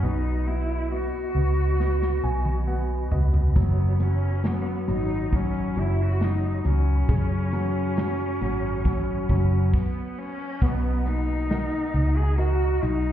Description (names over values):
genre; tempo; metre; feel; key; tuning
pop ballad; 68 BPM; 4/4; straight; B major; A4 = 441 Hz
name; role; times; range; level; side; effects
rich cello; melody; 0.0-13.1 s; B3 to G#4; -30 LUFS; equal; none
clear concert grand piano; accompaniment; 0.0-13.1 s; C#3 to G#5; -32 LUFS; equal; none
mellow tonewheel organ; sustained chords; 0.0-13.1 s; F#4 to B5; -37 LUFS; right 2 dB; chorus vibrato, fast rotary speaker
vintage muted fingered electric bass; bass; 0.0-13.1 s; F#1 to C#2; -24 LUFS; equal; none
modern studio drum kit; drums; 1.8-13.0 s; crash cymbal, hi-hat, kick drum, snare drum, toms; -25 LUFS; equal; none
nylon-string guitar; arpeggios; 3.6-13.1 s; F#2 to F#4; -31 LUFS; left 4 dB; none
reverse cymbal; sound effects; 9.7-10.6 s; none; -51 LUFS; right 4 dB; none
room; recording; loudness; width
light reverb; heard muffled through a wall, stone room reverb, EQ; -22 LUFS; side -11 dB against mid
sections
0.0-10.6 A section; 10.6-13.1 B section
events
drum fill 1.8-3.6; grand piano fill 1.8-3.6; reverse cymbal 9.7-10.6; stop 9.7-10.6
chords
0.0 B; 3.6 F#sus4; 10.6 Bmaj7